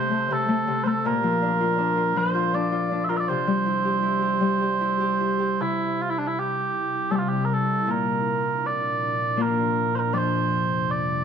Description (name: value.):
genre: celtic folk, Celtic slow air.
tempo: 80 BPM.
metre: 3/4.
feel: rubato.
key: C mixolydian.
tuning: A4 = 440 Hz.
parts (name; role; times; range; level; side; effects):
mellow small bagpipes; melody; 0.0-11.2 s; D4 to E5; -24 LUFS; right 4 dB; none.
Celtic harp; accompaniment; 0.0-11.2 s; F2 to C5; -26 LUFS; left 3 dB; none.
ethereal airy pad; sustained chords; 6.1-11.2 s; F2 to E4; -29 LUFS; left 3 dB; ensemble chorus, built-in reverb.
room: moderate scoring stage reverb, RT60 1.6 s.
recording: dark, warm production.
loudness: -21 LUFS.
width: side -7 dB against mid.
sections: 0.0-5.6 A section; 5.6-11.2 A section.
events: none.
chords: 0.0 Am/C; 1.1 Bb; 3.3 C; 7.9 Bb; 10.1 Fsus2.